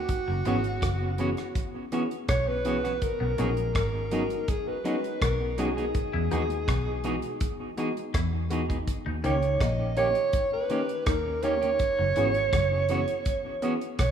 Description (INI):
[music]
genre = lovers rock reggae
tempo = 82 BPM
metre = 4/4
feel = straight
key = unclear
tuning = A4 = 440 Hz
[part]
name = breathy alto saxophone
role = melody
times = 0.0-14.1 s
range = F#4 to D#5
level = -28 LUFS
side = right 2 dB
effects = tape echo
[part]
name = vintage muted fingered electric bass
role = bass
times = 0.0-14.1 s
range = F#1 to E2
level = -29 LUFS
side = equal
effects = none
[part]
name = damped 70s drum kit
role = drums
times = 0.1-14.1 s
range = hi-hat, kick drum, rim click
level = -31 LUFS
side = equal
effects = none
[part]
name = twangy electric guitar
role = riff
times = 0.3-14.1 s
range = F#3 to E4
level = -41 LUFS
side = left 7 dB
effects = phaser
[part]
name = bell-like tine electric piano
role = accompaniment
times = 0.5-13.8 s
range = G#3 to G#4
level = -34 LUFS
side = left 3 dB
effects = tape echo
[part]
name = clean electric guitar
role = stabs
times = 0.5-13.7 s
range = D#3 to G#4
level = -34 LUFS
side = right 3 dB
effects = tape echo
[sound]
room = wet plate reverb, RT60 2.4 s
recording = rough home demo mix, small room reverb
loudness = -25 LUFS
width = side -8 dB against mid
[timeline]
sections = 0.0-14.1 A section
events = none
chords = 0.1 F#7sus4; 3.0 B6; 5.9 Emaj7; 8.9 D#7; 11.8 F#7sus4